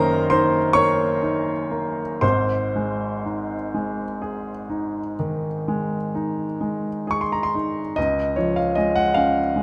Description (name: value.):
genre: classical, romantic nocturne for solo piano.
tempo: 38-52 BPM (dotted quarters).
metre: 12/8.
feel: rubato.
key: unclear.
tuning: A4 = 439 Hz.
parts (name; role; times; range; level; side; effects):
clear baby grand piano; solo; 0.0-9.6 s; Ab1 to Eb6; -23 LUFS; equal; none.
room: moderate recital hall reverb, RT60 1.3 s.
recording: close, detailed microphones.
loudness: -23 LUFS.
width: mono.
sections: 0.0-8.0 A section; 8.0-9.6 B section.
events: none.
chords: 0.0 Ebm/Gb; 2.2 Ab; 8.0 Db.